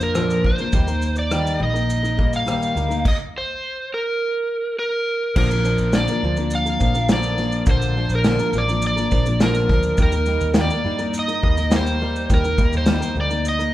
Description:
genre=acoustic pop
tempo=104 BPM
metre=4/4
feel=straight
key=Bb major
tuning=A4 = 441 Hz
part: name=overdriven slide guitar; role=melody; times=0.0-13.7 s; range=Bb4 to F5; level=-23 LUFS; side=right 1 dB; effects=none
part: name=picked steel-string acoustic guitar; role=accompaniment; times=0.0-13.7 s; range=Bb2 to Bb4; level=-24 LUFS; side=left 2 dB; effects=none
part: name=vintage muted fingered electric bass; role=bass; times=0.0-13.7 s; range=A1 to G2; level=-24 LUFS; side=equal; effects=none
part: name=natural country drum kit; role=drums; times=0.0-13.7 s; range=crash cymbal, kick drum, rim click, shaker, snare drum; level=-21 LUFS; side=equal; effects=none
room=moderate large studio reverb, RT60 1.2 s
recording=band playing live in one room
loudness=-18 LUFS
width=side -14 dB against mid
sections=0.0-5.4 A section; 5.4-13.7 B section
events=stop 3.1-5.4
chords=0.0 Bb; 0.7 Eb; 5.4 Bb; 10.0 Eb

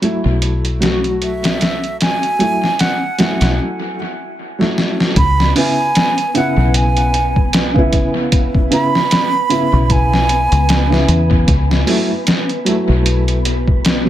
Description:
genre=trip hop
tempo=76 BPM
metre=4/4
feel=swing 57% on 16ths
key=C# minor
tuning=A4 = 440 Hz
part: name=felt-muted upright piano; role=accompaniment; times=0.0-14.1 s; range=C#3 to F#4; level=-19 LUFS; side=equal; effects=tremolo, vintage 12-bit sampler grit, tape echo
part: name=trip hop sampler-style drum kit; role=drums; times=0.0-14.1 s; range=hi-hat, kick drum, snare drum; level=-17 LUFS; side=equal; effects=overdrive, dub echo
part: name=deep dub fingered electric bass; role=bass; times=0.3-14.1 s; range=B1 to E2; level=-16 LUFS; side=equal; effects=none
part: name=bright wooden flute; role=melody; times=1.2-11.1 s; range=E5 to B5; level=-19 LUFS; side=right 2 dB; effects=dub echo
part: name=wind-like tuned noise texture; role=texture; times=5.4-14.1 s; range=B3 to B4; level=-25 LUFS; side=equal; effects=built-in reverb
room=light reverb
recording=echo-heavy mix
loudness=-12 LUFS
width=side -12 dB against mid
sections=0.0-5.2 A section; 5.2-14.1 B section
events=break 3.6-5.2; drum fill 4.6-5.2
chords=0.0 F#m7; 5.2 C#m7; 11.5 F#m7

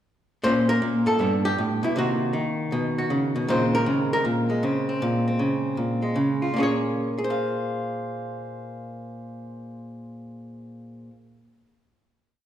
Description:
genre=solo jazz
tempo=157 BPM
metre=4/4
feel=swing 65% on 8ths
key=Bb minor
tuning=A4 = 440 Hz
part: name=archtop guitar, miked and amplified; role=solo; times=0.4-11.2 s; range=G2 to F5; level=-23 LUFS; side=equal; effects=none
room=wet recital hall reverb, RT60 1.6 s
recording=recorded in a church or concert hall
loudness=-22 LUFS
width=side -10 dB against mid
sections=0.4-6.5 A section; 6.5-9.6 final chord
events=none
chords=0.4 Bbm7; 1.2 G; 2.0 Cm7b5; 2.7 Badd9; 3.5 Bbm11; 6.5 Bbm9

